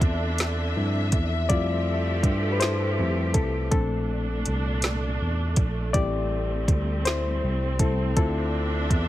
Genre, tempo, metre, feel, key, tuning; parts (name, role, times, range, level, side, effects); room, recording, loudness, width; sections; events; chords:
slow six-eight R&B; 54 BPM (dotted quarters); 6/8; straight; D minor; A4 = 440 Hz
reed electric piano; accompaniment; 0.0-9.1 s; F3 to D5; -29 LUFS; left 5 dB
warm studio string section; sustained chords; 0.0-9.1 s; Bb2 to E5; -31 LUFS; right 1 dB
tine electric piano; bass; 0.0-9.1 s; A1 to G2; -26 LUFS; right 1 dB
smooth R&B drum kit; drums; 0.0-9.1 s; hi-hat, kick drum, snare drum; -23 LUFS; right 1 dB
light reverb; -22 LUFS; side -14 dB against mid
0.0-9.1 A section
reed electric piano solo 0.0-9.1
0.0 Dm9; 1.5 Fmaj9; 3.7 Bbmaj9; 5.9 Am7; 8.2 Dm9